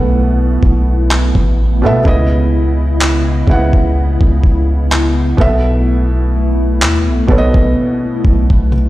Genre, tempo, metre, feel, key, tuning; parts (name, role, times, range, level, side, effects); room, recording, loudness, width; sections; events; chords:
contemporary R&B; 63 BPM; 4/4; swing 54% on 16ths; A4 = 442 Hz
felt-muted upright piano; accompaniment; 0.0-8.9 s; B2 to F#5; -18 LUFS; right 1 dB
hollow soft pad; sustained chords; 0.0-8.9 s; C#3 to D#5; -19 LUFS; left 1 dB; ensemble chorus
long sustained 808-style bass; bass; 0.0-8.9 s; A1 to B2; -13 LUFS; equal
dusty soul sampler-style drum kit; drums; 0.6-8.9 s; handclaps, kick drum, toms; -13 LUFS; equal
digital ambience; played on a big sound system in a bare room, stone room reverb; -10 LUFS; side -16 dB against mid
0.0-8.9 A section
break 0.0-8.9; drum fill 8.7
0.0 B7sus4; 2.1 C#m9; 5.4 B7sus4